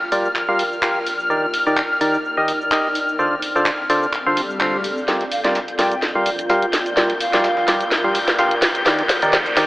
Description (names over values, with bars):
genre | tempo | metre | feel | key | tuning
piano house | 127 BPM | 4/4 | swing 55% on 16ths | G minor | A4 = 440 Hz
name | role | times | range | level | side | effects
dark studio string section | sustained chords | 0.0-9.7 s | F6 to G6 | -24 LUFS | left 1 dB | low-pass filter
granular cloud pad | texture | 0.0-9.7 s | C4 to G5 | -27 LUFS | equal | built-in reverb
percussive organ stab | riff | 0.1-9.7 s | D3 to F5 | -20 LUFS | equal | chorus, vintage 12-bit sampler grit, dub echo
house drum kit | drums | 0.1-9.7 s | cabasa, handclaps, hi-hat, snare drum | -21 LUFS | equal | high-pass filter on hats, high-pass filter on perc, high-pass filter on snare, high-pass filter on cymbals, high-pass filter on room
swell and riser | sound effects | 4.3-9.7 s | none | -28 LUFS | equal | none
breakbeat sampler-style drum kit | drums | 5.1-9.7 s | hi-hat, snare drum, tambourine | -31 LUFS | equal | high-pass filter on perc, high-pass filter on snare, high-pass filter on hats
breathy mellow jazz flute | melody | 5.3-7.9 s | F5 to G5 | -26 LUFS | right 1 dB | dub echo
room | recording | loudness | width
wet lush hall reverb, RT60 2.0 s, digital ambience | AM radio sound | -16 LUFS | side -19 dB against mid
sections
0.0-5.1 A section; 5.1-9.7 B section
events
swell 4.3-5.1; build-up 5.1-9.7; drum fill 5.1-9.7; riser 5.1-9.7; filter sweep on string section 5.1-9.7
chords
0.0 Gm7; 1.1 Ebmaj7; 3.0 Dm7; 5.1 Gm7; 8.6 Ebmaj7